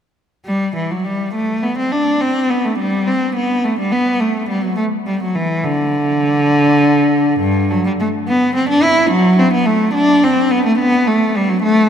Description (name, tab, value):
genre	classical, baroque-style suite movement for unaccompanied cello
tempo	70 BPM (dotted quarters)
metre	12/8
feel	rubato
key	G major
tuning	A4 = 439 Hz
part	rich cello	solo	0.5-11.9 s	G2 to E4	-13 LUFS	equal	none
room	wet cathedral reverb, RT60 4.7 s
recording	none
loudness	-13 LUFS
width	side -8 dB against mid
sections	0.5-11.9 A section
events	none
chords	none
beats	| 0.46 1.33 2.21 3.07 | 3.93 4.79 5.66 6.51 | 7.41 8.28 9.12 9.96 | 10.79 11.63